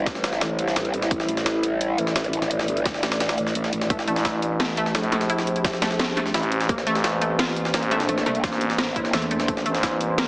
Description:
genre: dark technical drum and bass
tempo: 172 BPM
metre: 4/4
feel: straight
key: A phrygian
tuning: A4 = 439 Hz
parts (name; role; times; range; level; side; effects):
- deep dark ambient pad; sustained chords; 0.0-10.3 s; G3 to D5; -27 LUFS; equal; chorus, built-in reverb, sidechain pumping
- growl bass; bass; 0.0-4.1, 6.7-9.6 s; G1 to E2; -26 LUFS; equal; chorus, overdrive
- drum and bass drum kit; drums; 0.1-10.3 s; hi-hat, snare drum; -28 LUFS; equal; overdrive
- electronic kick drum; drums; 0.1-9.9 s; none; -26 LUFS; equal; overdrive
- jungle sampler-style drum kit; drums; 0.1-10.3 s; hi-hat, snare drum; -28 LUFS; equal; high-pass filter on hats, high-pass filter on snare
- analog pluck; arpeggios; 3.9-10.3 s; A3 to F4; -27 LUFS; equal; chorus, sidechain pumping, dub echo
- growling FM bass; bass; 4.1-10.3 s; A1 to Bb1; -25 LUFS; equal; none
room: moderate digital room reverb, RT60 1.3 s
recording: heavily compressed radio sound, multiband compression, small speaker sound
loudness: -21 LUFS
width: side -24 dB against mid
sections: 0.0-10.3 A section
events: kick drops out 3.2-3.9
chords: 0.0 C/A; 1.1 Dsus2/A; 3.9 Am7; 6.7 Bbadd9/A; 9.5 C/A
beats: 0.07 0.41 0.76 | 1.11 1.46 1.81 2.16 | 2.51 2.85 3.20 3.55 | 3.90 4.25 4.60 4.95 | 5.30 5.65 6.00 6.34 | 6.69 7.04 7.39 7.74 | 8.09 8.44 8.79 9.13 | 9.48 9.83 10.18

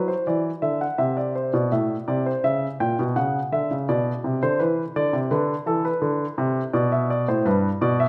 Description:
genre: classical, baroque-style two-part invention for grand piano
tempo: 84 BPM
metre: 4/4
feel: straight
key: unclear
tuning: A4 = 440 Hz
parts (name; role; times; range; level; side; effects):
- warm grand piano; solo; 0.0-8.1 s; G2 to G5; -23 LUFS; equal; none
room: moderate recital hall reverb, RT60 1.6 s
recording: none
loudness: -23 LUFS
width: mono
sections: 0.0-8.1 A section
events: none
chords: 0.0 E5; 1.0 Am; 2.4 F#7(no3); 3.9 Bm; 5.3 Bm/D; 6.7 G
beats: 0.26 0.98 1.71 | 2.43 3.15 3.87 4.59 | 5.30 6.02 6.73 7.45

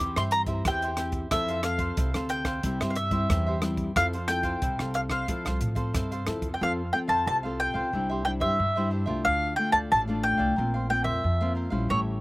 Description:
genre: samba and choro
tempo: 91 BPM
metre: 4/4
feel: straight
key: F major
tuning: A4 = 440 Hz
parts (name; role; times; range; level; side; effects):
- mandolin; melody; 0.0-12.0 s; C#5 to D6; -26 LUFS; equal; none
- cavaquinho; accompaniment; 0.0-12.2 s; D4 to F5; -37 LUFS; right 3 dB; none
- nylon-string guitar; accompaniment; 0.0-12.2 s; G2 to A4; -32 LUFS; left 2 dB; none
- upright bass; bass; 0.0-12.2 s; A1 to F3; -31 LUFS; equal; none
- compact cocktail drum kit; drums; 0.2-6.6 s; hi-hat, kick drum, rim click; -32 LUFS; equal; none
room: little or no reverb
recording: recorded outdoors, with no room sound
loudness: -24 LUFS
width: side -20 dB against mid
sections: 0.0-6.6 A section; 6.6-12.2 B section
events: none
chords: 0.0 C/E; 1.3 Fmaj7; 2.6 C; 4.0 Fmaj7; 6.6 F; 7.9 Cadd9; 9.3 Dm; 10.6 Bbsus2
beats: 0.65 | 1.31 1.98 2.64 3.30 | 3.96 4.62 5.29 5.95 | 6.61 7.27 7.93 8.59 | 9.26 9.92 10.58 11.24 | 11.90

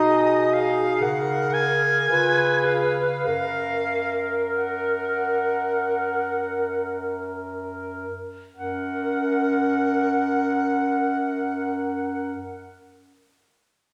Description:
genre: classical, lyrical piece for single-reed quartet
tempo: 42-62 BPM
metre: 4/4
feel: rubato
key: F# major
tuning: A4 = 441 Hz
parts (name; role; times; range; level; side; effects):
- clear soprano saxophone; melody; 0.0-12.3 s; D#5 to G#5; -28 LUFS; equal; none
- mellow alto saxophone; second line; 0.0-12.3 s; G#4 to B4; -29 LUFS; equal; none
- mellow clarinet; accompaniment; 0.0-12.3 s; C#4 to A#4; -29 LUFS; equal; none
- warm bass clarinet; bass; 0.0-12.3 s; F#2 to C#3; -32 LUFS; equal; none
room: wet scoring stage reverb, RT60 1.5 s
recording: none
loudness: -24 LUFS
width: mono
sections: 0.0-8.6 A section; 8.6-13.9 B section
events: slowing down 0.0-8.6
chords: 0.0 G#m/B; 1.0 F#/C#; 2.1 C#7; 3.3 F#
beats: 0.02 1.02 2.08 | 3.26 4.53 5.83 7.17 | 8.56 9.92 11.27

